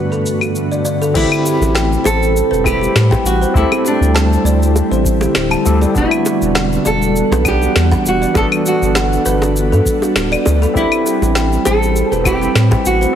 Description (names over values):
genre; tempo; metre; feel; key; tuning
sunset chillout; 100 BPM; 4/4; swing 54% on 16ths; A dorian; A4 = 440 Hz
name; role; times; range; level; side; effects
overdriven tine electric piano; accompaniment; 0.0-13.2 s; G2 to B5; -20 LUFS; moving between left 3 dB and right 3 dB; fast tremolo, auto-pan, tape echo
ethereal airy pad; sustained chords; 0.0-13.2 s; G2 to F#5; -20 LUFS; right 1 dB; ensemble chorus, built-in reverb
kalimba; arpeggios; 0.1-13.1 s; F#4 to A5; -21 LUFS; left 2 dB; tape echo
smooth R&B drum kit; drums; 0.1-13.1 s; claves, crash cymbal, shaker, snare drum; -21 LUFS; left 2 dB; none
nylon-string guitar; melody; 1.2-13.2 s; D4 to A4; -18 LUFS; right 2 dB; tape echo
round analog bass; bass; 1.2-13.1 s; D1 to A2; -16 LUFS; equal; tube saturation
electronic kick drum; drums; 1.2-12.8 s; none; -20 LUFS; equal; overdrive
bongos; percussion; 1.6-12.8 s; none; -21 LUFS; right 1 dB; none
room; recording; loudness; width
light reverb; heavily compressed radio sound; -12 LUFS; side -9 dB against mid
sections
0.0-1.2 A section; 1.2-13.2 B section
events
none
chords
0.0 Gmaj9; 1.2 Am9; 3.6 D7sus4; 6.0 Em9; 8.4 Gmaj9; 10.8 Am9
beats
0.56 | 1.16 1.76 2.36 2.96 | 3.56 4.16 4.76 5.36 | 5.96 6.56 7.16 7.76 | 8.36 8.96 9.56 10.16 | 10.76 11.36 11.96 12.56